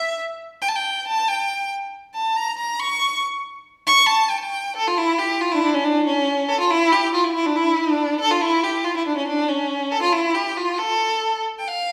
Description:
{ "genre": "klezmer", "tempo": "139 BPM", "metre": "2/4", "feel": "straight", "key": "A phrygian dominant", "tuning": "A4 = 444 Hz", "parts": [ { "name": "rich violin", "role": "solo", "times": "0.0-11.9 s", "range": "C#4 to C#6", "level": "-21 LUFS", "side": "equal", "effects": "none" } ], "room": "wet recital hall reverb, RT60 1.2 s", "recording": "recorded in a church or concert hall", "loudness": "-21 LUFS", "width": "mono", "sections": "0.0-4.7 A section; 4.7-11.7 B section", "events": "violin solo 0.0-4.7", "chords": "none" }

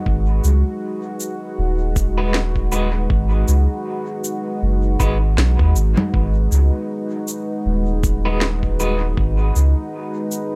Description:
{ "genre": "ambient dub", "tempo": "79 BPM", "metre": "4/4", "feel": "swing 57% on 16ths", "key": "G# minor", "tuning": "A4 = 440 Hz", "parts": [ { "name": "deep dark ambient pad", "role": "sustained chords", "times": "0.0-10.6 s", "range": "G#3 to B4", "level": "-28 LUFS", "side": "equal", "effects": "chorus, built-in reverb" }, { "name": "soft dub sub bass", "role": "bass", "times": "0.1-9.7 s", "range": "D#1 to D#2", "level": "-19 LUFS", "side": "equal", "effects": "none" }, { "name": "electronic kick drum", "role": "drums", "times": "0.1-9.3 s", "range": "none", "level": "-23 LUFS", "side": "equal", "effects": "none" }, { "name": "electronic shaker, snare drum and congas", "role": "drums", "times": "0.4-10.5 s", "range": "none", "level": "-26 LUFS", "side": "equal", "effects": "dub echo" }, { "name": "electric guitar at the edge of break-up", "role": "stabs", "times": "2.2-9.0 s", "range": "G#3 to B4", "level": "-30 LUFS", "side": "equal", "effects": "tremolo, dub echo" } ], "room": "digital ambience", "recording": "none", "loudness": "-19 LUFS", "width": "mono", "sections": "0.1-10.6 A section", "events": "none", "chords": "0.1 G#m7" }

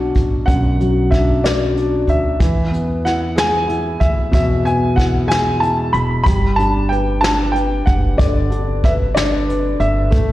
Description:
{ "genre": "six-eight pop ballad", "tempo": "62 BPM (dotted quarters)", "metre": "6/8", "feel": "straight", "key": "unclear", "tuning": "A4 = 440 Hz", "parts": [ { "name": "warm baby grand piano", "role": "melody", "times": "0.0-10.3 s", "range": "D5 to B5", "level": "-20 LUFS", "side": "equal", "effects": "slapback echo" }, { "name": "felt-muted upright piano", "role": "accompaniment", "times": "0.0-10.3 s", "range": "F#2 to B4", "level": "-19 LUFS", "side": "left 1 dB", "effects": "slapback echo" }, { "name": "upright bass", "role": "bass", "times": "0.0-10.3 s", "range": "E1 to E2", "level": "-20 LUFS", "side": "equal", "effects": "none" }, { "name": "vintage brush drum kit", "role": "drums", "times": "0.2-10.3 s", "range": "hi-hat, kick drum, snare drum", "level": "-18 LUFS", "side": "equal", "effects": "none" } ], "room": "light reverb", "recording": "live gig heard through the venue's PA, recital hall reverb", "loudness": "-14 LUFS", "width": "side -15 dB against mid", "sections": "0.0-10.3 A section", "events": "none", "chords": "0.0 Bm; 2.4 E; 6.3 G" }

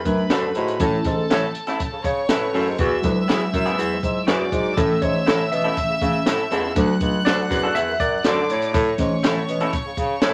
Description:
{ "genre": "uptempo 1960s-style soul", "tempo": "121 BPM", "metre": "4/4", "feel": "straight", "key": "A major", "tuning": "A4 = 441 Hz", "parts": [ { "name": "warm studio violin section", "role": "second line", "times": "0.0-10.3 s", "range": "A4 to F#6", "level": "-30 LUFS", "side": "equal", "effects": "none" }, { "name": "barky tine electric piano", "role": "accompaniment", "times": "0.0-10.3 s", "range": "E3 to E5", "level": "-26 LUFS", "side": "equal", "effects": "none" }, { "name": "warm bassoon", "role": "bass", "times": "0.1-10.3 s", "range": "C#2 to D3", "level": "-27 LUFS", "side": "equal", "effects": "none" }, { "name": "compact cocktail drum kit", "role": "drums", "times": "0.1-10.3 s", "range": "hi-hat, kick drum, snare drum", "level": "-26 LUFS", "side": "equal", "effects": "none" }, { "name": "warm baritone saxophone", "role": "riff", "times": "0.3-8.9 s", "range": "D2 to A2", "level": "-29 LUFS", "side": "equal", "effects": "none" }, { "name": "electric guitar through a small old amp", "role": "stabs", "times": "0.3-10.3 s", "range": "F#3 to A4", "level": "-29 LUFS", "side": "equal", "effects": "none" } ], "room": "moderate studio reverb, RT60 0.6 s", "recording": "vinyl crackle", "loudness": "-21 LUFS", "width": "mono", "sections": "0.0-10.3 A section", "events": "tine electric piano solo 0.0-10.3", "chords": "0.0 D; 0.8 A; 2.8 Eadd9; 4.8 A; 6.8 D; 8.7 A" }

